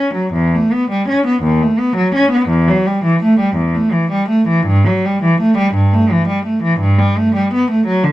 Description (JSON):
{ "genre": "classical, baroque-style suite movement for unaccompanied cello", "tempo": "56 BPM (dotted quarters)", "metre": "6/8", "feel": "rubato", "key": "unclear", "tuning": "A4 = 444 Hz", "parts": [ { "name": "rich cello", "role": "solo", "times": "0.0-8.1 s", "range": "D#2 to C#4", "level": "-12 LUFS", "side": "equal", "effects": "none" } ], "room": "light reverb", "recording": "dark, warm production", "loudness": "-12 LUFS", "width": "side -15 dB against mid", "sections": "0.0-8.1 A section", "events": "none", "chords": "none" }